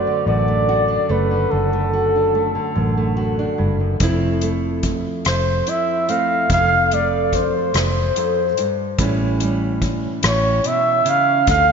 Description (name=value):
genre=acoustic folk-pop ballad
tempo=48 BPM (dotted quarters)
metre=6/8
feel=straight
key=unclear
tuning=A4 = 443 Hz
part: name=breathy flugelhorn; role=melody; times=0.0-11.7 s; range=A4 to F5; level=-18 LUFS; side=equal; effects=ping-pong delay
part: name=nylon-string guitar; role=accompaniment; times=0.0-11.7 s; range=E2 to G4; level=-22 LUFS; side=right 2 dB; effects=none
part: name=vintage muted fingered electric bass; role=bass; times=0.0-11.7 s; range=F1 to D2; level=-21 LUFS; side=equal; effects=none
part: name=soft-mallet drum kit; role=drums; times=4.0-11.7 s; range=hi-hat, kick drum, rim click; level=-24 LUFS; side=left 1 dB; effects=none
room=moderate lush hall reverb, RT60 2.7 s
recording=dreamy mix soaked in reverb, nothing above 7.5 kHz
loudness=-16 LUFS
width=side -6 dB against mid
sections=0.0-4.0 A section; 4.0-11.7 B section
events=none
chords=0.0 D/F#; 4.0 Fmaj7; 9.0 A7